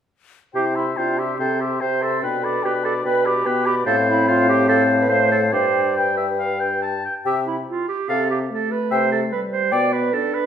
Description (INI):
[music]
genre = quick classical-period movement for wind quintet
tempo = 145 BPM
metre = 4/4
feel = rubato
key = C major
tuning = A4 = 440 Hz
[part]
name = mellow hollow silver concert flute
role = melody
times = 0.5-9.9 s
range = F5 to C6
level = -26 LUFS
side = left 8 dB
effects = none
[part]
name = clear oboe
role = second line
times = 0.5-9.9 s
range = B4 to A5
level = -24 LUFS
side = left 3 dB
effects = none
[part]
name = warm French horn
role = accompaniment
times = 0.5-10.5 s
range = G3 to E4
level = -26 LUFS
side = left 2 dB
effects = none
[part]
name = warm clarinet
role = accompaniment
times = 0.5-10.5 s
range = E4 to D5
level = -22 LUFS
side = right 6 dB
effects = none
[part]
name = mellow bassoon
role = bass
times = 0.5-10.1 s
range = G2 to C3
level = -24 LUFS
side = equal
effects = none
[sound]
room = wet recital hall reverb, RT60 1.3 s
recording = recorded in a church or concert hall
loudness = -18 LUFS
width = side -8 dB against mid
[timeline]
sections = 0.6-10.5 A section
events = none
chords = 0.6 C; 2.2 G/B; 3.9 F/A; 5.5 G; 7.3 C5; 8.1 F/C; 9.7 G/B